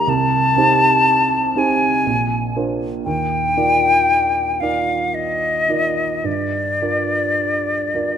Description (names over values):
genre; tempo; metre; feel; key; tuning
classical, impressionist duo for flute and grand piano; 53-61 BPM; 3/4; rubato; C minor; A4 = 444 Hz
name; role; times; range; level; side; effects
bright silver concert flute; melody; 0.0-8.2 s; D5 to Bb5; -16 LUFS; left 2 dB; none
dark baby grand piano; accompaniment; 0.0-8.2 s; Bb1 to D5; -21 LUFS; right 4 dB; none
room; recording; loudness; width
moderate scoring stage reverb, RT60 2.1 s; close, detailed microphones, faint mains hum; -15 LUFS; side -8 dB against mid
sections
0.0-8.2 A section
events
none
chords
0.1 Cm6; 2.1 Bb9; 3.1 Ebmaj9; 6.3 Gm7